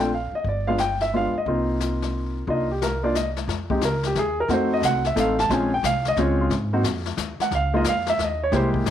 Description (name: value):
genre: jazz piano trio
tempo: 178 BPM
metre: 3/4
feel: swing 64% on 8ths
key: C minor, F minor from 3.5 s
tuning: A4 = 440 Hz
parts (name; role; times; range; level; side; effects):
- warm baby grand piano; melody; 0.0-8.9 s; Ab3 to A5; -22 LUFS; equal; none
- upright bass; bass; 0.0-8.9 s; G1 to Ab2; -27 LUFS; right 1 dB; none
- jazz brush drum kit; drums; 0.4-8.9 s; brushed snare drum, hi-hat, kick drum, snare drum; -30 LUFS; left 7 dB; none
room: light reverb, small room reverb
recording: 1960s-style stereo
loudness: -20 LUFS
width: side -10 dB against mid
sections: 0.0-3.5 A section; 3.5-8.9 B section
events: none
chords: 0.4 G7b9; 1.5 Cm11; 3.5 Fm7; 4.5 F7b9; 5.5 Bbm9; 6.5 Ab7(no3); 7.5 Dbadd9